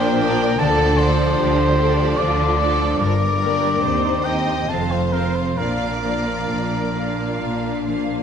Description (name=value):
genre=classical, slow romantic movement for symphony orchestra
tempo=65-76 BPM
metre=3/4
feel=rubato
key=Bb major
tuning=A4 = 440 Hz
part: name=warm symphonic violin section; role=melody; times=0.0-7.8 s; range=F4 to Eb5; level=-28 LUFS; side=left 6 dB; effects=none
part: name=warm cor anglais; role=second line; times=0.0-7.9 s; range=Bb4 to A5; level=-23 LUFS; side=right 1 dB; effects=none
part: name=warm symphonic violin section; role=second line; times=0.0-8.2 s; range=F4 to F5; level=-28 LUFS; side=left 2 dB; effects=none
part: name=warm chamber viola section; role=accompaniment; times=0.0-8.2 s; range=F3 to Eb4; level=-25 LUFS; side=right 2 dB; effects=none
part: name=concert harp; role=arpeggios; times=0.0-8.2 s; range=F2 to C5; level=-25 LUFS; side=left 7 dB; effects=none
part: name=rich symphonic cello section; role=bass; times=0.0-8.2 s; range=Eb2 to D3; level=-25 LUFS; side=right 3 dB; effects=none
part: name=warm symphonic double bass section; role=bass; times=0.0-8.2 s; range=F1 to Eb2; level=-26 LUFS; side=right 2 dB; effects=none
room=moderate concert hall reverb, RT60 2.1 s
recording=none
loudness=-17 LUFS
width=side -7 dB against mid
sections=0.0-8.2 A section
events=none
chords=0.0 Bb; 0.6 Dm; 3.0 Gm; 3.8 Cm/Eb; 4.7 F5; 5.6 Bb